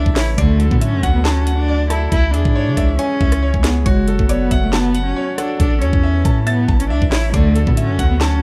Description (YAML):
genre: hip hop, drill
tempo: 138 BPM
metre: 4/4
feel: half-time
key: F# minor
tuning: A4 = 441 Hz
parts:
  - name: dark cello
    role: melody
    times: 0.0-8.4 s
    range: G#3 to E4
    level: -22 LUFS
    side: equal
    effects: none
  - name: clear concert grand piano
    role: accompaniment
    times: 0.0-8.4 s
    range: D3 to A6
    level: -26 LUFS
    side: equal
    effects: none
  - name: dark analog pad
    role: sustained chords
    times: 0.0-8.4 s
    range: C#3 to F#4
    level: -32 LUFS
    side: equal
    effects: chorus
  - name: long sustained 808-style bass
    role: bass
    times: 0.0-8.4 s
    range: F#1 to C#3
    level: -20 LUFS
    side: equal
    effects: none
  - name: drill drum kit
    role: drums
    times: 0.1-8.3 s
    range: handclaps, hi-hat, kick drum, rim click, snare drum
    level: -20 LUFS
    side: equal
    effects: none
  - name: mallet-like synth pluck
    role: second line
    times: 0.4-8.4 s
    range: C#5 to A5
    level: -32 LUFS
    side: equal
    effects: chorus, digital delay
room: light reverb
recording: none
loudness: -16 LUFS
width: mono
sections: 0.0-8.4 A section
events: none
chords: 0.4 D; 2.1 C#m; 3.9 F#m; 5.6 A; 7.3 D